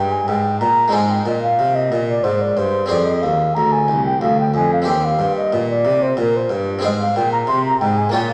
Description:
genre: classical, baroque-style sonata movement with continuo.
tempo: 91 BPM.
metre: 3/4.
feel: rubato.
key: C minor.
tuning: A4 = 440 Hz.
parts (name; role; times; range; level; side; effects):
mellow baroque flute; melody; 0.0-8.3 s; Bb4 to C6; -20 LUFS; equal; none.
harpsichord; accompaniment; 0.0-8.3 s; C2 to Db5; -23 LUFS; equal; none.
dark cello; bass; 0.0-8.3 s; C2 to C3; -26 LUFS; equal; none.
room: wet recital hall reverb, RT60 1.3 s.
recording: none.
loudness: -18 LUFS.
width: mono.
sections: 0.0-8.3 A section.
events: none.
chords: 0.0 Cm; 2.9 Fm; 4.9 Cm/Eb; 6.8 Ab.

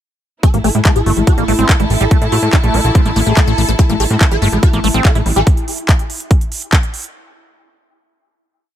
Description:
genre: psychedelic trance.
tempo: 143 BPM.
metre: 4/4.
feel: straight.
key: unclear.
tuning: A4 = 439 Hz.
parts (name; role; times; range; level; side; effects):
swarming rave lead; melody; 0.4-5.4 s; A3 to A4; -20 LUFS; equal; chorus, phaser, sidechain pumping, dub echo.
bubbling stepped-filter texture; sustained chords; 0.4-5.5 s; E4; -24 LUFS; equal; chorus, built-in reverb, sidechain pumping.
liquid acid bass; riff; 0.4-5.4 s; G3 to E4; -21 LUFS; moving between left 8 dB and right 5 dB; phaser, auto-pan, sidechain pumping, dub echo.
big-room dance drum kit; drums; 0.4-7.1 s; handclaps, hi-hat; -20 LUFS; equal; none.
electronic kick drum; drums; 0.4-6.8 s; none; -12 LUFS; equal; none.
rich studio string section; texture; 0.4-5.5 s; E4 to A5; -23 LUFS; left 1 dB; sidechain pumping.
plucky analog bass; bass; 0.5-5.4 s; G1 to A2; -16 LUFS; equal; none.
metallic wobble bass; second line; 4.1-5.5 s; A3 to C4; -34 LUFS; left 1 dB; none.
room: little or no reverb.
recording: none.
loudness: -11 LUFS.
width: side -11 dB against mid.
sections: 0.4-7.1 groove.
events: none.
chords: 0.4 A5.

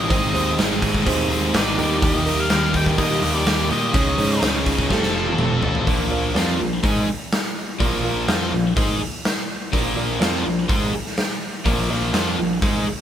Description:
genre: classic rock.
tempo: 125 BPM.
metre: 4/4.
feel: straight.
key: Bb major.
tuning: A4 = 440 Hz.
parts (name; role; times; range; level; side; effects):
octave-fuzz lead guitar; melody; 0.0-4.4 s; D5 to G5; -26 LUFS; left 1 dB; distortion.
biting overdriven guitar; riff; 0.0-12.9 s; Ab2 to A4; -23 LUFS; left 1 dB; none.
overdriven semi-hollow guitar; riff; 0.0-12.9 s; Ab2 to Ab4; -28 LUFS; equal; none.
growling picked electric bass; bass; 0.0-12.8 s; F1 to Bb2; -26 LUFS; equal; overdrive.
reed electric piano; accompaniment; 0.1-12.9 s; Eb4 to D5; -29 LUFS; right 4 dB; none.
big rock drum kit; drums; 0.1-12.7 s; hi-hat, kick drum, snare drum, toms; -22 LUFS; equal; none.
room: light reverb.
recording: band playing live in one room.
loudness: -18 LUFS.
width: side -10 dB against mid.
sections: 0.0-5.9 A section; 5.9-13.0 B section.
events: drum fill 4.9-5.9.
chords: 0.1 Ab; 1.8 Eb; 3.9 Dbsus2; 4.9 Fadd9; 5.9 Bb.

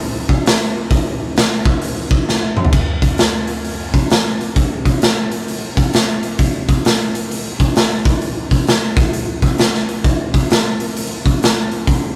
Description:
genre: rock.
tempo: 131 BPM.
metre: 4/4.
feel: swing 64% on 8ths.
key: none.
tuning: none.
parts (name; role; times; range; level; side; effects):
raw garage drum kit; drums; 0.0-12.0 s; crash cymbal, hi-hat, kick drum, snare drum, toms; -16 LUFS; equal; none.
room: little or no reverb.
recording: rough rehearsal-room recording, warm saturation.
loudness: -16 LUFS.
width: mono.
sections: 0.0-2.7 A section; 2.7-12.2 B section.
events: drum fill 2.3-2.7.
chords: none.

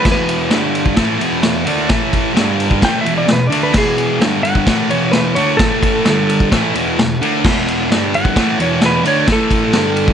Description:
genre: garage rock duo or trio.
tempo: 130 BPM.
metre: 4/4.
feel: straight.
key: unclear.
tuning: A4 = 443 Hz.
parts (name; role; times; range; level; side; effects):
clean lap steel guitar; melody; 0.0-10.1 s; G#4 to G5; -18 LUFS; equal; plate reverb, tape echo.
thick fuzz guitar; riff; 0.0-10.1 s; E2 to D4; -15 LUFS; equal; distortion.
vintage drum kit; drums; 0.1-10.1 s; crash cymbal, kick drum, ride cymbal, snare drum; -16 LUFS; equal; none.
room: moderate studio reverb, RT60 0.6 s.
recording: nothing above 10.6 kHz.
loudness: -12 LUFS.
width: side -8 dB against mid.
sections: 0.0-10.1 A section.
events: electric slide guitar solo 0.0-10.1.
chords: 0.0 E5; 0.5 G5; 1.0 E5; 1.9 A5; 2.4 G5; 2.8 E; 4.2 G5; 4.7 E5; 5.6 A5; 6.1 G5; 6.5 E5; 7.9 G5; 8.4 E5; 9.3 A5.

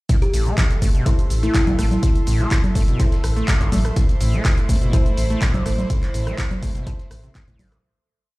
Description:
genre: acid house.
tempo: 124 BPM.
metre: 4/4.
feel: straight.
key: A minor.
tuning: A4 = 440 Hz.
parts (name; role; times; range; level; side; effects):
overdriven acid bass; riff; 0.1-7.8 s; G2 to A3; -27 LUFS; equal; analog chorus, sidechain pumping, tape echo.
dusty soul sampler-style drum kit; drums; 0.1-7.8 s; hi-hat, snare drum; -40 LUFS; right 1 dB; none.
electronic kick drum; drums; 0.1-7.6 s; none; -18 LUFS; equal; none.
punchy analog drum machine; drums; 0.1-7.8 s; cabasa, congas, handclaps, hi-hat, rim click; -26 LUFS; equal; none.
warbly tape-like pad; texture; 0.1-7.8 s; A4 to C6; -35 LUFS; right 2 dB; chorus, built-in reverb, sidechain pumping.
kalimba; melody; 0.2-1.6 s; E4 to G4; -28 LUFS; left 1 dB; tape echo.
round analog bass; bass; 0.3-7.8 s; G1 to A1; -21 LUFS; equal; sidechain pumping.
deep mellow chord stab; stabs; 1.1-7.0 s; E4 to C5; -33 LUFS; left 1 dB; chorus, phaser, tape echo.
warm studio string section; sustained chords; 4.0-7.8 s; A3 to C5; -31 LUFS; right 2 dB; sidechain pumping.
room: digital ambience.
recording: played on a big sound system in a bare room, large studio reverb.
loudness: -16 LUFS.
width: side -21 dB against mid.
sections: 0.1-7.8 drop.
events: drop 0.1-7.8; fade-out 5.3-7.8.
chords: 0.1 Am.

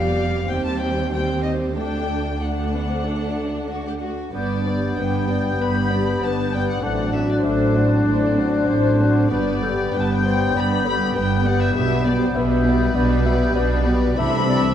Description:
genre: quick classical-period movement for symphony orchestra.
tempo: 97 BPM.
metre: 4/4.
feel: uneven beats, rubato.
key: G major.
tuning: A4 = 439 Hz.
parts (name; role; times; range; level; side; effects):
warm chamber violin section; melody; 0.0-14.7 s; B4 to B5; -28 LUFS; left 6 dB; none.
warm chamber violin section; second line; 0.0-14.7 s; B3 to E5; -30 LUFS; left 3 dB; none.
warm symphonic viola section; accompaniment; 0.0-14.7 s; F#3 to D4; -26 LUFS; right 1 dB; none.
rich chamber double bass section; bass; 0.0-14.7 s; F1 to Eb2; -25 LUFS; right 2 dB; none.
warm chamber cello section; bass; 0.0-14.7 s; D2 to C3; -25 LUFS; right 2 dB; none.
mellow hollow large flute ensemble; second line; 4.3-14.7 s; E6 to G6; -29 LUFS; left 2 dB; none.
warm bassoon; accompaniment; 4.3-14.7 s; B3 to D4; -29 LUFS; left 1 dB; none.
mellow French horn section; sustained chords; 4.3-14.7 s; E3 to D4; -24 LUFS; left 2 dB; none.
mellow clarinet; second line; 5.6-14.6 s; G4 to E5; -29 LUFS; left 3 dB; none.
room: wet scoring stage reverb, RT60 1.9 s.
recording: dark, warm production.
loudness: -18 LUFS.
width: side -10 dB against mid.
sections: 0.0-4.3 A section; 4.3-14.7 B section.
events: none.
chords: 0.5 Cm/Eb; 1.8 D; 4.3 G; 6.8 D7/A; 9.3 G; 11.8 G/B; 14.2 Am/C.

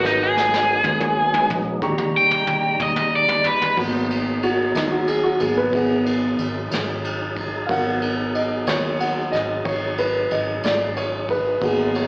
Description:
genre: slow blues.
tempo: 61 BPM (dotted quarters).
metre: 12/8.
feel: straight.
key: G# minor.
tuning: A4 = 440 Hz.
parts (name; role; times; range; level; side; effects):
cranked stack guitar; melody; 0.0-3.8 s; D#4 to G5; -17 LUFS; equal; overdrive.
dark grand piano; accompaniment; 0.0-12.1 s; F#3 to C#6; -22 LUFS; equal; slapback echo.
tonewheel organ; sustained chords; 0.0-12.1 s; C#3 to A#5; -28 LUFS; equal; slow rotary speaker.
vintage muted fingered electric bass; bass; 0.0-12.1 s; G#1 to D#2; -30 LUFS; equal; none.
vintage brush drum kit; drums; 0.1-12.1 s; crash cymbal, kick drum, ride cymbal, snare drum, toms; -26 LUFS; equal; none.
room: little or no reverb.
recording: live gig heard through the venue's PA, club reverb, AM radio sound.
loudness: -18 LUFS.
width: side -32 dB against mid.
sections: 0.0-3.8 A section; 3.8-12.1 A section.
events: drum fill 0.0-3.8; overdriven electric guitar solo 0.0-3.8; grand piano solo 3.8-12.1.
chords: 0.0 G#m7; 1.8 D#7; 3.8 G#m7.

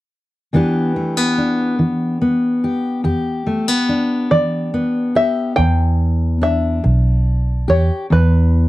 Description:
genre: folk.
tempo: 48 BPM (dotted quarters).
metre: 6/8.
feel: straight.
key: E minor.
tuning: A4 = 440 Hz.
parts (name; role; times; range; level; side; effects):
fingerpicked steel-string acoustic guitar; accompaniment; 0.5-8.7 s; E2 to G4; -17 LUFS; left 1 dB; none.
open-back banjo; melody; 4.3-8.7 s; B4 to G5; -19 LUFS; equal; none.
vintage muted fingered electric bass; bass; 5.6-8.7 s; B1 to E2; -14 LUFS; right 1 dB; none.
room: light reverb.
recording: dry, close 1970s-style studio recording.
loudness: -15 LUFS.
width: side -17 dB against mid.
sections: 0.5-5.6 A section; 5.6-8.7 B section.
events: none.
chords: 0.5 Em7.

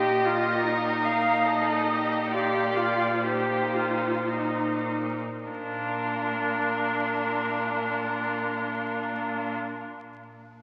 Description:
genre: classical, slow romantic movement for string quartet.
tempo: 46-77 BPM.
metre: 3/4.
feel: rubato.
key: Bb major.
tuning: A4 = 437 Hz.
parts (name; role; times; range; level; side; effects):
rich violin; melody; 0.0-9.5 s; Bb4 to F5; -33 LUFS; equal; none.
rich violin; second line; 0.0-9.5 s; Eb4 to Bb4; -36 LUFS; equal; none.
clear viola; accompaniment; 0.0-9.5 s; D4 to G4; -30 LUFS; equal; none.
clear cello; bass; 0.0-9.5 s; Bb2; -36 LUFS; equal; none.
room: wet church reverb, RT60 2.7 s.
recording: very old 78 rpm record, vinyl crackle.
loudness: -27 LUFS.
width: mono.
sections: 0.0-5.5 A section; 5.5-8.8 B section.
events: slowing down 0.0-5.5.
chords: 0.0 Eb/Bb; 5.5 Bb.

